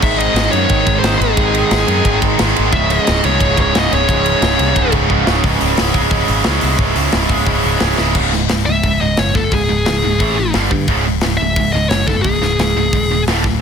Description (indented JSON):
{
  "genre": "heavy metal",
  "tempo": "177 BPM",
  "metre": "4/4",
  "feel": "straight",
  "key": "C# harmonic minor",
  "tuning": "A4 = 440 Hz",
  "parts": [
    { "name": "high-gain lead guitar", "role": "melody", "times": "0.0-4.9, 8.7-13.2 s", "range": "G#4 to E5", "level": "-18 LUFS", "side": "left 2 dB", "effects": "distortion, ping-pong delay" },
    { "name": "rich chamber string section", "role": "sustained chords", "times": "0.0-5.4 s", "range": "B#2 to G#4", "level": "-28 LUFS", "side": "left 1 dB", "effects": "none" },
    { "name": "distorted electric guitar", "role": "riff", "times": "0.0-13.6 s", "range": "C#2 to E4", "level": "-19 LUFS", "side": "right 14 dB", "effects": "overdrive" },
    { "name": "distorted electric guitar", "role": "riff", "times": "0.0-8.2, 13.6 s", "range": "C#2 to G#3", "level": "-22 LUFS", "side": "right 1 dB", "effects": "overdrive" },
    { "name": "heavy high-gain guitar", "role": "riff", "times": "0.0-13.6 s", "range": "C#2 to E4", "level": "-21 LUFS", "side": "left 16 dB", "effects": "distortion" },
    { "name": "modern bright picked electric bass", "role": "bass", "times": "0.0-13.6 s", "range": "C#1 to G2", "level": "-19 LUFS", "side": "equal", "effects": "none" },
    { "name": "tight metal drum kit", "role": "drums", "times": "0.0-13.5 s", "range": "crash cymbal, hi-hat, kick drum, ride cymbal, snare drum", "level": "-18 LUFS", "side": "left 1 dB", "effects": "none" }
  ],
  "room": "little or no reverb",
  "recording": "dense, heavily limited modern master",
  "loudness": "-12 LUFS",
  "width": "side -7 dB against mid",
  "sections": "0.0-5.4 A section; 5.4-8.2 B section; 8.2-13.6 C section",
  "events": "drum fill 5.1-5.4, 8.0",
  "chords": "0.0 G#; 2.7 C#m; 8.2 C#5; 10.2 A5; 10.5 G5; 10.9 C#5; 13.3 D5",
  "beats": "| 0.02 0.36 0.70 1.04 | 1.37 1.71 2.05 2.39 | 2.73 3.07 3.41 3.75 | 4.08 4.42 4.76 5.10 | 5.44 5.78 6.12 6.46 | 6.80 7.14 7.48 7.82 | 8.16 8.50 8.84 9.18 | 9.52 9.86 10.20 10.54 | 10.88 11.22 11.56 11.90 | 12.24 12.58 12.92 13.26 | 13.60"
}